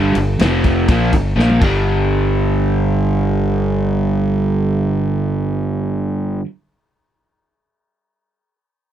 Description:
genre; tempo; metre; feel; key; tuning
blues rock power trio and southern rock; free time; none; none; unclear; A4 = 439 Hz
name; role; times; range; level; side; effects
crunchy overdriven guitar; riff; 0.0-6.5 s; F2 to Bb3; -17 LUFS; right 2 dB; none
fuzz fingered electric bass; bass; 0.0-6.4 s; F1 to Bb1; -18 LUFS; left 1 dB; overdrive
vintage drum kit; drums; 0.1-1.7 s; crash cymbal, kick drum, ride cymbal, snare drum, toms; -19 LUFS; equal; none
room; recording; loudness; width
little or no reverb; dry, close 1970s-style studio recording; -14 LUFS; side -10 dB against mid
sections
0.0-1.9 A section; 1.9-5.7 B section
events
drum fill 1.4-1.9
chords
0.4 F5; 0.9 G5; 1.4 Bb5; 1.6 G5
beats
free time

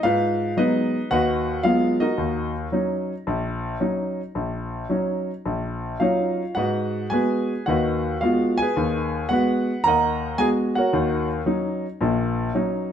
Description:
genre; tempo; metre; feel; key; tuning
solo jazz; 110 BPM; 4/4; swing 69% on 8ths, rubato; Eb minor; A4 = 440 Hz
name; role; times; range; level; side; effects
clear grand piano; solo; 0.0-12.9 s; Bb1 to Bb5; -21 LUFS; equal; none
room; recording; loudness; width
wet studio reverb, RT60 0.8 s; band playing live in one room; -21 LUFS; side -9 dB against mid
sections
0.0-12.9 A section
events
none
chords
0.0 Abm7; 2.2 Ebm7; 6.6 Abm7; 10.9 Ebm7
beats
| 0.04 0.58 1.12 1.65 | 2.19 2.73 3.27 3.81 | 4.36 4.90 5.45 6.01 | 6.57 7.12 7.67 8.22 | 8.76 9.31 9.85 10.39 | 10.93 11.46 12.00 12.55

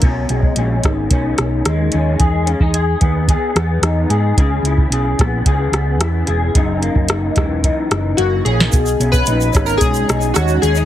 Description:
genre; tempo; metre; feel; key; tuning
indie pop, bedroom pop; 110 BPM; 4/4; straight; B major; A4 = 440 Hz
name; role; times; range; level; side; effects
electric guitar through a small old amp; accompaniment; 0.0-10.8 s; F#2 to G#4; -19 LUFS; left 2 dB; ensemble chorus, warbly pitch drift
hollow-body short-scale fingered electric bass; bass; 0.0-10.8 s; E1 to G#2; -18 LUFS; equal; none
soft vintage rhythm box; drums; 0.0-10.8 s; hi-hat, kick drum, rim click, shaker, snare drum; -16 LUFS; equal; none
chorused retro synth keys; melody; 8.2-10.8 s; F#4 to B4; -18 LUFS; left 2 dB; analog chorus, ping-pong delay
egg shaker; percussion; 8.7-10.8 s; none; -31 LUFS; right 8 dB; none
room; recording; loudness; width
light reverb; heavily compressed radio sound, multiband compression; -13 LUFS; side -12 dB against mid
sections
0.0-8.7 A section; 8.7-10.8 B section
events
drum fill 8.2-8.7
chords
0.0 B69; 2.2 Emaj7; 4.4 C#m7; 6.5 F#6; 8.7 B69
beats
| 0.03 0.57 1.11 1.66 | 2.20 2.75 3.29 3.83 | 4.38 4.92 5.46 6.01 | 6.55 7.09 7.64 8.18 | 8.72 9.27 9.81 10.35

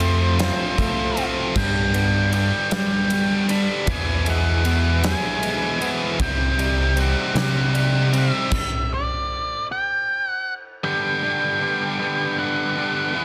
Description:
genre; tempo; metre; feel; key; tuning
quiet-loud alternative rock; 52 BPM (dotted quarters); 6/8; straight; G major; A4 = 444 Hz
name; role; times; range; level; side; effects
octave-fuzz lead guitar; melody; 0.0-13.2 s; C5 to B5; -27 LUFS; equal; distortion
electric guitar through a small old amp; arpeggios; 0.0-8.5 s; E2 to G#4; -31 LUFS; equal; analog delay
heavy high-gain guitar; riff; 0.0-8.5 s; E2 to C4; -30 LUFS; equal; distortion
scooped high-gain guitar; riff; 0.0-13.2 s; G2 to G#4; -28 LUFS; equal; distortion
growling fingered electric bass; bass; 0.0-8.3 s; C2 to G3; -23 LUFS; equal; overdrive
huge arena drum kit; drums; 0.0-8.7 s; crash cymbal, kick drum, ride cymbal, snare drum; -29 LUFS; equal; none
overdriven tonewheel organ; sustained chords; 10.8-13.2 s; D4 to B4; -35 LUFS; equal; slow rotary speaker, chorus vibrato
room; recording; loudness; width
light reverb, small room reverb; dense, heavily limited modern master; -21 LUFS; mono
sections
0.0-10.8 A section; 10.8-13.2 A section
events
stop 8.5-10.8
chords
0.0 F; 1.6 G; 3.9 E; 6.2 Cm; 8.5 N.C.; 10.8 G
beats
0.39 | 1.55 2.71 | 3.87 5.03 | 6.20 7.36 | 8.52 9.68 | 10.84 12.00 | 13.15

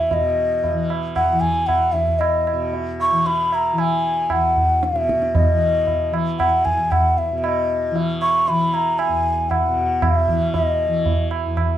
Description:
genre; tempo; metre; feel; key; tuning
indian classical, Hindustani; 115 BPM; 5/4; straight; E raga yaman; A4 = 442 Hz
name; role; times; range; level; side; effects
mellow hollow bansuri; melody; 0.0-11.3 s; D#5 to C#6; -19 LUFS; left 1 dB; none
tanpura; drone; 0.0-11.8 s; E2 to E3; -25 LUFS; left 2 dB; none
tabla; percussion; 0.1-11.8 s; none; -23 LUFS; right 3 dB; none
room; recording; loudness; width
wet small room reverb, RT60 0.5 s; dark, warm production; -17 LUFS; side -11 dB against mid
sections
0.1-11.8 A section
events
none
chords
none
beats
| 0.11 0.63 1.16 1.69 2.21 | 2.73 3.26 3.78 4.31 4.83 | 5.35 5.87 6.39 6.91 7.43 | 7.95 8.47 8.99 9.51 10.02 | 10.54 11.05 11.57

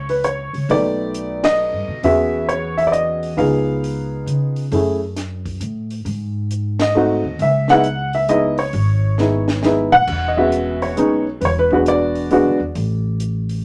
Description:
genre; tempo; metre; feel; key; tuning
jazz piano trio; 134 BPM; 3/4; swing 66% on 8ths; C# minor, E major from 10.1 s; A4 = 440 Hz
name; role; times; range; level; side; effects
warm upright piano; melody; 0.0-12.6 s; G#3 to F#5; -19 LUFS; equal; none
upright bass; bass; 0.0-13.6 s; E1 to C#3; -25 LUFS; equal; none
compact cocktail drum kit; drums; 0.1-13.6 s; crash cymbal, hi-hat, kick drum, ride cymbal, snare drum, toms; -31 LUFS; equal; none
room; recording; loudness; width
light reverb; none; -18 LUFS; mono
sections
0.0-10.1 A section; 10.1-13.6 B section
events
band accent 1.4, 6.7; drum fill 9.2-10.1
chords
0.0 N.C.; 0.7 B7alt; 2.0 E69; 3.4 C#7; 4.7 F#m; 6.1 G#5; 7.4 C#m9; 10.1 E69; 12.8 N.C.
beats
0.24 | 0.69 1.14 1.59 | 2.03 2.48 2.93 | 3.37 3.82 4.27 | 4.71 5.16 5.61 | 6.05 6.50 6.95 | 7.39 7.84 8.29 | 8.74 9.18 9.63 | 10.08 10.52 10.97 | 11.41 11.86 12.31 | 12.75 13.20 13.65

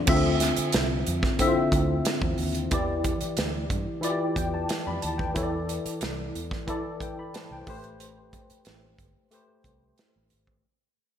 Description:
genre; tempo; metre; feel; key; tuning
lush 1970s-style soul; 91 BPM; 4/4; straight; D dorian; A4 = 440 Hz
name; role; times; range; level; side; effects
tine electric piano; accompaniment; 0.0-10.7 s; D3 to B5; -27 LUFS; left 2 dB; overdrive, ensemble chorus
vintage muted fingered electric bass; bass; 0.1-10.6 s; G1 to G2; -31 LUFS; right 1 dB; none
modern studio drum kit; drums; 0.1-10.6 s; crash cymbal, hi-hat, kick drum, snare drum; -28 LUFS; right 2 dB; none
room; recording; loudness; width
light reverb, small room ambience; none; -24 LUFS; side -9 dB against mid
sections
0.1-10.6 A section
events
fade-out 0.1-10.6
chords
0.1 Dm9; 2.7 Em7; 5.4 C6; 7.7 Am9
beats
| 0.08 0.74 1.40 2.06 | 2.72 3.38 4.04 4.70 | 5.36 6.02 6.68 7.34 | 8.00 8.66 9.32 9.98

